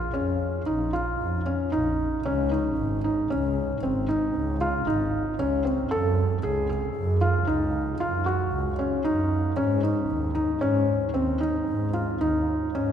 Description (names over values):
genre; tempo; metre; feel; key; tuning
contemporary instrumental, chamber music in an uneven meter; 114 BPM; 7/4; straight; Db major; A4 = 440 Hz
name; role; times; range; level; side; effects
felt-muted upright piano; arpeggios; 0.0-12.9 s; C4 to A4; -25 LUFS; equal; none
muted double bass; bass; 0.0-12.9 s; Ab1 to Ab2; -28 LUFS; right 1 dB; none
room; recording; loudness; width
wet cathedral reverb, RT60 4.7 s; recorded in a church or concert hall; -23 LUFS; side -9 dB against mid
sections
0.0-12.9 A section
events
none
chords
0.0 Bbm; 2.2 Dbmaj7(no3); 5.9 Gbmadd9; 9.6 Absus4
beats
0.13 0.66 1.19 1.72 | 2.25 2.77 3.30 3.82 4.35 4.87 5.39 | 5.91 6.43 6.95 7.47 8.00 8.52 9.04 | 9.57 10.09 10.61 11.14 11.67 12.21 12.75